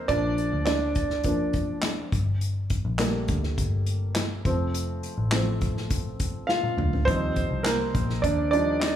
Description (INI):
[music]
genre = piano-driven pop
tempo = 103 BPM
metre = 4/4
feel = straight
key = Bb major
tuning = A4 = 439 Hz
[part]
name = warm baby grand piano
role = accompaniment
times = 0.0-9.0 s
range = F3 to F5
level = -26 LUFS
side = right 1 dB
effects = none
[part]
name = vintage muted picked electric bass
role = bass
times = 0.0-9.0 s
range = F1 to Eb2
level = -28 LUFS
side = left 1 dB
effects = none
[part]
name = unplugged drum kit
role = drums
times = 0.1-9.0 s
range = handclaps, hi-hat, kick drum, snare drum, toms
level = -28 LUFS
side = equal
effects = none
[sound]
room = light reverb, studio reverb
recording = small room reverb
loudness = -23 LUFS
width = side -10 dB against mid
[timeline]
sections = 0.0-9.0 A section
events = grand piano solo 0.0-9.0; drum fill 6.5-7.1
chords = 0.1 Bb; 2.1 Gmadd9; 4.5 F; 7.1 Ebadd9